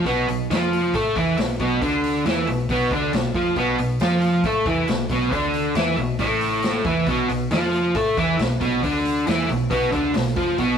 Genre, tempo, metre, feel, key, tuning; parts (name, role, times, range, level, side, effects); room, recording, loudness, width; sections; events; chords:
blues rock power trio and southern rock; 137 BPM; 4/4; straight; B minor; A4 = 439 Hz
overdriven semi-hollow guitar; riff; 0.0-10.8 s; A2 to A4; -20 LUFS; right 1 dB
overdriven picked electric bass; bass; 0.0-10.8 s; A1 to A2; -29 LUFS; equal
vintage drum kit; drums; 0.1-10.7 s; hi-hat, kick drum, snare drum; -27 LUFS; left 1 dB
moderate stone room reverb, RT60 1.1 s; rough rehearsal-room recording, warm saturation; -19 LUFS; side -7 dB against mid
0.0-10.8 A section
0.0 Bm